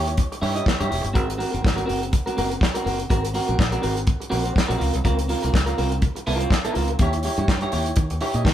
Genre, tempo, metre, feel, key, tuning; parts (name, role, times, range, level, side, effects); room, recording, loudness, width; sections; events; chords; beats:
disco; 123 BPM; 4/4; swing 56% on 16ths; A4 = 441 Hz
electric guitar at the edge of break-up; accompaniment; 0.0-8.5 s; C4 to Eb5; -25 LUFS; right 1 dB; spring reverb
fingered electric bass; bass; 0.0-8.5 s; Fb1 to Eb3; -25 LUFS; equal
damped 70s drum kit; drums; 0.1-8.5 s; handclaps, hi-hat, kick drum, snare drum; -22 LUFS; equal
light reverb; band playing live in one room; -20 LUFS; side -11 dB against mid
0.0-8.5 A section
0.0 Eb7b9; 1.2 Ab9; 4.8 Db6; 7.0 Eb7b9
0.18 0.66 | 1.15 1.64 2.12 2.61 | 3.10 3.58 4.07 4.56 | 5.05 5.53 6.02 6.51 | 6.99 7.48 7.97 8.45